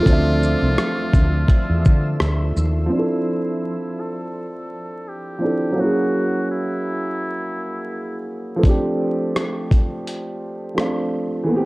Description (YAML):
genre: lo-fi hip hop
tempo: 84 BPM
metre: 4/4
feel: swing 57% on 16ths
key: D minor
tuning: A4 = 441 Hz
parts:
  - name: trumpet with metal mute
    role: melody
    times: 0.0-8.2 s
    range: E4 to A4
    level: -30 LUFS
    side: equal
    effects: low-pass filter, analog delay
  - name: warm upright piano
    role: accompaniment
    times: 0.0-11.7 s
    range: E3 to E5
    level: -22 LUFS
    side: right 1 dB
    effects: low-pass filter
  - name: granular cloud pad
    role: sustained chords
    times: 0.0-2.9 s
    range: F3 to E6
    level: -32 LUFS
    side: left 1 dB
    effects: built-in reverb, low-pass filter
  - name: woody fretless electric bass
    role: bass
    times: 0.1-2.9 s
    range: C2 to D3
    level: -19 LUFS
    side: equal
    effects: none
  - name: dusty soul sampler-style drum kit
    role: drums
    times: 0.1-2.8, 8.6-11.0 s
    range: hi-hat, kick drum, rim click, shaker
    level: -17 LUFS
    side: equal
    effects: none
room: light reverb, digital ambience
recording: worn, warbling old tape, cassette tape, vinyl crackle, warbly pitch drift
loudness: -18 LUFS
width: side -22 dB against mid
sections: 0.0-2.9 A section; 2.9-11.7 B section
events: none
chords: 0.0 Dm9; 5.8 F#9; 8.6 F6